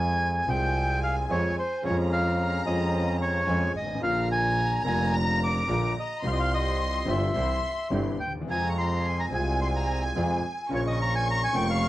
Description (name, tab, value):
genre	tango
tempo	108 BPM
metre	4/4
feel	rubato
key	F minor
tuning	A4 = 439 Hz
part	bandoneon	melody	0.0-11.9 s	C5 to D6	-29 LUFS	equal	none
part	warm studio violin section	second line	0.0-11.9 s	Ab5 to Db6	-34 LUFS	left 2 dB	none
part	clear concert grand piano	accompaniment	0.0-11.9 s	F1 to Ab4	-32 LUFS	left 2 dB	none
part	bandoneon	stabs	0.0-11.9 s	C4 to Bb4	-37 LUFS	right 3 dB	tape echo
part	clear double bass	bass	0.0-11.9 s	F1 to F2	-28 LUFS	right 1 dB	transformer saturation
room	light reverb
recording	worn, warbling old tape, cassette tape, warbly pitch drift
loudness	-24 LUFS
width	side -15 dB against mid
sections	0.0-11.9 A section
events	none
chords	0.0 Fm; 1.8 Db/F; 4.0 Bb; 6.2 Csus4; 7.4 C; 8.5 Fm; 10.7 Bbm